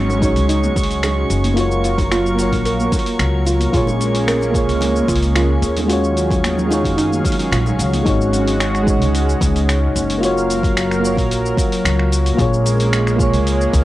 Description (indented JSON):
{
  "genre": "sunset chillout",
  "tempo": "111 BPM",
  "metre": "4/4",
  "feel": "straight",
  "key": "unclear",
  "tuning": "A4 = 439 Hz",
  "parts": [
    { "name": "soft electric-piano-like synth keys", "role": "accompaniment", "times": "0.0-13.8 s", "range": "G#3 to C#5", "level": "-20 LUFS", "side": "equal", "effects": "chorus, auto-pan, cassette tape, tape echo" },
    { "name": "lush unison pad", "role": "sustained chords", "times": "0.0-13.8 s", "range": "D#3 to E#5", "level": "-22 LUFS", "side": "equal", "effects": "chorus, cassette tape" },
    { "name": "upright bass", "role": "bass", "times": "0.0-13.8 s", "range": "F#1 to F#2", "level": "-19 LUFS", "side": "equal", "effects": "none" },
    { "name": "drifting glass-harmonics texture", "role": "texture", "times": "0.0-8.1 s", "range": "C#6", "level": "-30 LUFS", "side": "right 2 dB", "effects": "chorus, built-in reverb, cassette tape" },
    { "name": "dusty soul sampler-style drum kit", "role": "drums", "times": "0.1-13.8 s", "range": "cabasa, finger snaps, hi-hat", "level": "-25 LUFS", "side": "equal", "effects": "overdrive, cassette tape" },
    { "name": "bongos and congas", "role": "percussion", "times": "0.1-8.0 s", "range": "none", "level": "-28 LUFS", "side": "right 1 dB", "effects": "none" },
    { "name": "soft round pluck", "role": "arpeggios", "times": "0.2-7.7 s", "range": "D#4 to A#4", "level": "-24 LUFS", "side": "right 1 dB", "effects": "chorus, cassette tape, tape echo" },
    { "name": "electronic kick drum", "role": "drums", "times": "0.2-13.8 s", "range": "none", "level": "-20 LUFS", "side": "equal", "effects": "cassette tape" }
  ],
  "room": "light reverb",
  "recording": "home recording on cassette",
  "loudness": "-14 LUFS",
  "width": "side -15 dB against mid",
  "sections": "0.0-8.1 A section; 8.1-13.8 B section",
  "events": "none",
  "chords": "0.0 G#7sus4; 1.6 F#maj7; 3.7 A#m7; 5.9 D#m11; 8.1 G#7sus4; 10.2 F#maj7; 12.4 A#m7"
}